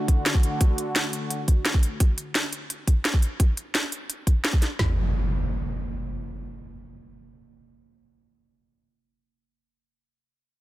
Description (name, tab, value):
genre	dark technical drum and bass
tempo	172 BPM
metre	4/4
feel	straight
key	unclear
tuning	A4 = 440 Hz
part	sweeping resonant pad	sustained chords	0.0-2.0 s	D3 to F#4	-31 LUFS	equal	chorus, sidechain pumping
part	drum and bass drum kit	drums	0.1-4.9 s	kick drum, snare drum, toms	-20 LUFS	equal	none
part	drum and bass drum kit	drums	0.1-4.7 s	hi-hat, snare drum	-26 LUFS	equal	none
part	impact	sound effects	4.8-9.1 s	none	-28 LUFS	equal	none
room	little or no reverb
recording	dense, heavily limited modern master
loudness	-22 LUFS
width	side -16 dB against mid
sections	0.0-4.8 A section; 4.8-7.6 B section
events	none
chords	0.0 D; 2.0 N.C.